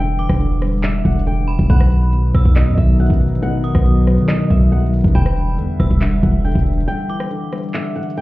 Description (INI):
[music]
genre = hip hop, trap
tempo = 139 BPM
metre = 4/4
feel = half-time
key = E minor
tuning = A4 = 440 Hz
[part]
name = flamenco guitar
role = melody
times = 0.0-8.2 s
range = D#5 to G5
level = -27 LUFS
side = equal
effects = ping-pong delay
[part]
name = tine electric piano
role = accompaniment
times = 0.0-8.2 s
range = B2 to G3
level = -20 LUFS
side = left 1 dB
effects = analog chorus
[part]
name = hollow soft pad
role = sustained chords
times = 0.0-8.2 s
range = F#3 to E5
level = -27 LUFS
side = equal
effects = chorus
[part]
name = hard-hitting 808-style bass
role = bass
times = 0.0-6.9 s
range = E1 to D#3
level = -17 LUFS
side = equal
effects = none
[part]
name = metallic FM bell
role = second line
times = 0.2-8.2 s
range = B5 to E6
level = -34 LUFS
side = right 4 dB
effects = chorus, ping-pong delay
[part]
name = trap drum kit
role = drums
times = 0.2-8.2 s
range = handclaps, hi-hat, kick drum, rim click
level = -17 LUFS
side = equal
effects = overdrive
[sound]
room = little or no reverb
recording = heard muffled through a wall, club reverb, EQ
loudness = -13 LUFS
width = side -18 dB against mid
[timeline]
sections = 0.0-8.2 A section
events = break 6.9-8.2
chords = 0.0 Em7; 1.7 B; 5.2 Em7